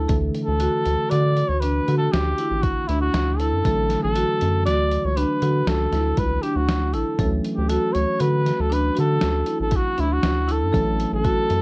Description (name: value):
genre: progressive instrumental, band music in an uneven meter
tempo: 118 BPM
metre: 7/4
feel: straight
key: D major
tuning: A4 = 440 Hz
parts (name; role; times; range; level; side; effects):
- warm trumpet; melody; 0.0-11.6 s; E4 to D5; -24 LUFS; equal; none
- tine electric piano; accompaniment; 0.0-11.6 s; D3 to C#4; -29 LUFS; equal; none
- marimba with medium hard mallets; arpeggios; 0.0-11.6 s; D4 to A4; -26 LUFS; equal; none
- rubbery square bass; bass; 0.0-11.6 s; A1 to D3; -22 LUFS; equal; none
- lo-fi sampler-style drum kit; drums; 0.1-11.6 s; hi-hat, kick drum, snare drum; -26 LUFS; equal; none
room: light reverb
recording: worn, warbling old tape, cassette tape, warbly pitch drift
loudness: -18 LUFS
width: side -26 dB against mid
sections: 0.0-11.6 A section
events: none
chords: 0.0 Dmaj7